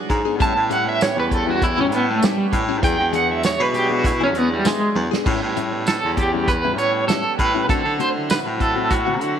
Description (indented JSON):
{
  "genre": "straight-eighth soul blues",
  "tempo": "99 BPM",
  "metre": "4/4",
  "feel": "swing 55% on 16ths",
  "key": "A mixolydian",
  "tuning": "A4 = 441 Hz",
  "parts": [
    { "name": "bright tonewheel organ", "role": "accompaniment", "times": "0.0-9.4 s", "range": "F#3 to E4", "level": "-29 LUFS", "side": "right 11 dB", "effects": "overdrive, slow rotary speaker" },
    { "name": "warm horn section", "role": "sustained chords", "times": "0.0-9.4 s", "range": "G#3 to G5", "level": "-33 LUFS", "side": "left 9 dB", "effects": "none" },
    { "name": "direct-recorded clean electric guitar", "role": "stabs", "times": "0.1-9.2 s", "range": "A2 to G#4", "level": "-28 LUFS", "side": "left 12 dB", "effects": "phaser" },
    { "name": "warm baritone saxophone", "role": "bass", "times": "0.1-9.4 s", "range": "E2 to D3", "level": "-23 LUFS", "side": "left 1 dB", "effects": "none" },
    { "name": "warm soul drum kit", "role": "drums", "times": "0.1-9.4 s", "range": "crash cymbal, hi-hat, kick drum, snare drum, tambourine, toms", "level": "-23 LUFS", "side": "right 1 dB", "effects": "none" },
    { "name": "electric guitar at the edge of break-up", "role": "melody", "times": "0.4-9.4 s", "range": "G3 to A5", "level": "-20 LUFS", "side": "right 2 dB", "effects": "tremolo, slapback echo" }
  ],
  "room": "light reverb, studio reverb",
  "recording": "1960s-style stereo with parts hard left and right",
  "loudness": "-17 LUFS",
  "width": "side -8 dB against mid",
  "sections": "0.0-5.3 A section; 5.3-9.4 B section",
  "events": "clean electric guitar solo 0.0-5.3; drum fill 5.0-5.3",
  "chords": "0.4 A7; 2.8 E7; 5.3 A7; 7.7 D7"
}